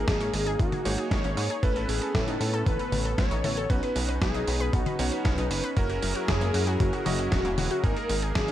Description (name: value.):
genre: italo disco.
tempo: 116 BPM.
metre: 4/4.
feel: straight.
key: B major.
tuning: A4 = 442 Hz.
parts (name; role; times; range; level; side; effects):
wide unison lead; melody; 0.0-8.5 s; F#4 to C#5; -31 LUFS; left 1 dB; cassette tape, ping-pong delay.
warm analog pad; sustained chords; 0.0-8.5 s; F#3 to A#4; -35 LUFS; equal; chorus.
wide unison pluck; arpeggios; 0.0-8.5 s; F#3 to B4; -35 LUFS; left 3 dB; digital delay.
bright electric grand piano; stabs; 0.0-8.5 s; A#3 to D#5; -35 LUFS; right 5 dB; none.
chorused synth bass; bass; 0.0-8.5 s; E1 to A2; -30 LUFS; equal; none.
dusty soul sampler-style drum kit; drums; 0.1-8.5 s; hi-hat, snare drum, toms; -32 LUFS; equal; gated reverb.
electronic kick drum; drums; 0.1-8.5 s; none; -27 LUFS; equal; none.
room: light reverb.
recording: none.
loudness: -24 LUFS.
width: side -12 dB against mid.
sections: 0.0-8.5 A section.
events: none.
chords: 0.0 G#sus2; 1.6 Aadd9; 3.7 Badd9; 5.8 F#7; 7.8 G#sus2.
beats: 0.08 0.60 1.11 | 1.63 2.15 2.67 3.18 | 3.70 4.22 4.73 5.25 | 5.77 6.29 6.80 7.32 | 7.84 8.35.